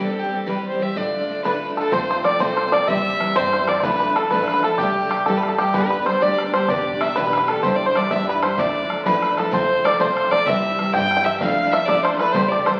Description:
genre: celtic folk, Celtic jig.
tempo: 127 BPM (dotted quarters).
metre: 6/8.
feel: straight.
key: D dorian.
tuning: A4 = 440 Hz.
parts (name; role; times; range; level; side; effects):
clear fiddle; melody; 0.0-12.8 s; G4 to G5; -24 LUFS; equal; none.
picked steel-string acoustic guitar; accompaniment; 0.0-12.8 s; D2 to G4; -26 LUFS; equal; none.
bluegrass banjo; second line; 1.5-12.8 s; G4 to G5; -24 LUFS; equal; none.
upright bass; bass; 1.9-12.8 s; E1 to G2; -40 LUFS; equal; none.
bodhran; percussion; 1.9-12.8 s; none; -32 LUFS; equal; none.
room: wet large studio reverb, RT60 1.4 s.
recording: very old 78 rpm record, vinyl crackle.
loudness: -20 LUFS.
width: mono.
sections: 0.0-1.9 A section; 1.9-9.5 B section; 9.5-12.8 B section.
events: none.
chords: 0.0 C; 1.0 Dm; 1.9 F; 2.9 C; 3.8 Dmadd9; 4.8 C6; 5.7 G; 6.7 Em7; 7.6 Cadd9; 8.6 Dmadd9; 9.5 F; 10.5 C; 11.4 Dmadd9.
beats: | 0.00 0.48 | 0.96 1.45 | 1.93 2.40 | 2.88 3.36 | 3.84 4.31 | 4.79 5.26 | 5.74 6.21 | 6.69 7.16 | 7.63 8.11 | 8.58 9.05 | 9.52 9.99 | 10.46 10.94 | 11.41 11.88 | 12.35.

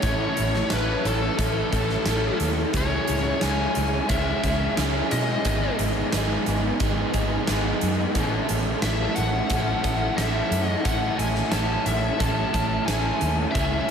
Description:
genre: rock, shoegaze and dream pop.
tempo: 89 BPM.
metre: 4/4.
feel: straight.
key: A lydian.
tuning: A4 = 441 Hz.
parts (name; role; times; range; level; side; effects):
biting lead guitar; melody; 0.0-13.9 s; A4 to A5; -28 LUFS; left 3 dB; overdrive, ping-pong delay.
overdriven electric guitar; riff; 0.0-13.9 s; G#2 to A4; -27 LUFS; right 6 dB; reverse reverb.
raw garage guitar; riff; 0.0-13.9 s; G#2 to E4; -29 LUFS; left 6 dB; overdrive, analog chorus.
vintage muted fingered electric bass; bass; 0.0-13.8 s; G#1 to B2; -27 LUFS; equal; none.
huge arena drum kit; drums; 0.0-13.7 s; hi-hat, kick drum, snare drum; -28 LUFS; equal; none.
room: wet huge ambient reverb, RT60 8.1 s.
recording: dreamy mix soaked in reverb.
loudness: -21 LUFS.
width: side -7 dB against mid.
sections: 0.0-13.9 A section.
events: none.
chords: 0.0 A; 2.7 C#m; 5.5 G#m; 8.2 A.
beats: | 0.04 0.71 1.39 2.07 | 2.75 3.42 4.10 4.77 | 5.45 6.12 6.80 7.48 | 8.15 8.83 9.50 10.18 | 10.85 11.53 12.20 12.88 | 13.55.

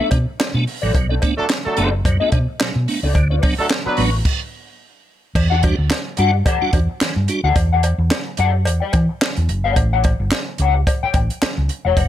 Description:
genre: funk.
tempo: 109 BPM.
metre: 4/4.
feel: swing 56% on 16ths.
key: unclear.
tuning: A4 = 440 Hz.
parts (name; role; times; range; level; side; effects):
mellow electric guitar; accompaniment; 0.0-12.0 s; F#4 to G5; -22 LUFS; left 8 dB; wah, ensemble chorus, plate reverb.
tonewheel organ; stabs; 0.0-7.5, 12.0-12.1 s; B2 to F#4; -24 LUFS; right 4 dB; overdrive, chorus vibrato, slow rotary speaker, plate reverb.
hollow-body short-scale fingered electric bass; bass; 0.1-12.1 s; E1 to E3; -18 LUFS; equal; none.
compact cocktail drum kit; drums; 0.1-12.1 s; crash cymbal, handclaps, hi-hat, kick drum, snare drum; -20 LUFS; equal; none.
cowbell; percussion; 0.1-12.1 s; none; -28 LUFS; equal; none.
warm horn section; second line; 1.4-4.0 s; F#3 to B4; -21 LUFS; right 1 dB; plate reverb.
room: light reverb.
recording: none.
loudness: -16 LUFS.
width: side -12 dB against mid.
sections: 0.0-5.4 A section; 5.4-12.1 B section.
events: stop 4.2-5.4.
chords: 0.0 Bm7; 3.1 D6; 5.4 Em9; 9.8 A6.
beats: 0.39 | 0.94 1.49 2.04 2.60 | 3.15 3.70 4.25 4.80 | 5.35 5.90 6.46 7.01 | 7.56 8.11 8.66 9.21 | 9.77 10.32 10.87 11.42 | 11.97.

